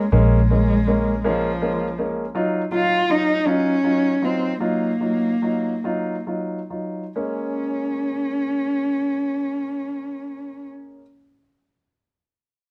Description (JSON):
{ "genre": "six-eight pop ballad", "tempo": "43-54 BPM (dotted quarters)", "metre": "6/8", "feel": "straight", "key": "Bb minor", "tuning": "A4 = 440 Hz", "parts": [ { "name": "dark cello", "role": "melody", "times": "0.0-10.7 s", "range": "F3 to F4", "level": "-24 LUFS", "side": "equal", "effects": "none" }, { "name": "clear baby grand piano", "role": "accompaniment", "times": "0.0-11.0 s", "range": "Gb3 to F4", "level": "-27 LUFS", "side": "equal", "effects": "none" }, { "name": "vintage muted fingered electric bass", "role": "bass", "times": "0.0-2.3 s", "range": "Bb1", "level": "-21 LUFS", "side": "equal", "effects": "none" } ], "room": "moderate studio reverb, RT60 0.6 s", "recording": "band playing live in one room", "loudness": "-22 LUFS", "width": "mono", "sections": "0.0-7.2 A section; 7.2-9.9 B section", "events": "slowing down 2.3-7.2", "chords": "0.0 Bbm7; 2.3 Ebmadd9; 7.2 Bbm7", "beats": "| 0.13 1.23 | 2.34 3.46 | 4.62 5.84 | 7.17 8.54" }